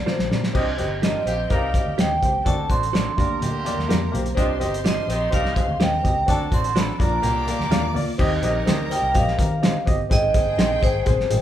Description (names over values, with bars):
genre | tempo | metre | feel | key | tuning
uptempo 1960s-style soul | 126 BPM | 4/4 | straight | Eb major | A4 = 439 Hz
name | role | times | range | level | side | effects
vibraphone with hard mallets | melody | 0.0-11.4 s | C5 to C6 | -24 LUFS | right 1 dB | none
warm baby grand piano | accompaniment | 0.0-11.4 s | Ab2 to G5 | -27 LUFS | left 1 dB | none
vintage muted fingered electric bass | bass | 0.0-11.4 s | G1 to Eb3 | -27 LUFS | equal | none
direct-recorded clean electric guitar | stabs | 0.1-10.7 s | Eb4 to Eb5 | -32 LUFS | right 4 dB | none
cloth-damped thuddy drum kit | drums | 0.1-11.4 s | crash cymbal, hi-hat, kick drum, snare drum | -22 LUFS | equal | none
congas | percussion | 0.1-11.4 s | none | -32 LUFS | right 1 dB | none
clear studio violin section | second line | 0.5-11.4 s | G4 to D6 | -37 LUFS | equal | none
clear horn section | second line | 0.6-11.4 s | D3 to C5 | -33 LUFS | right 1 dB | none
room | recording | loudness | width
moderate large studio reverb, RT60 0.8 s | band playing live in one room | -19 LUFS | side -11 dB against mid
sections
0.5-8.2 A section; 8.2-11.4 B section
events
drum fill 0.0-0.5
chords
0.0 Bbadd9; 0.5 Cm; 2.5 D7; 3.2 Gm/D; 4.4 Cm; 6.3 D7; 7.0 Bb; 8.2 Eb6; 10.1 Abmaj7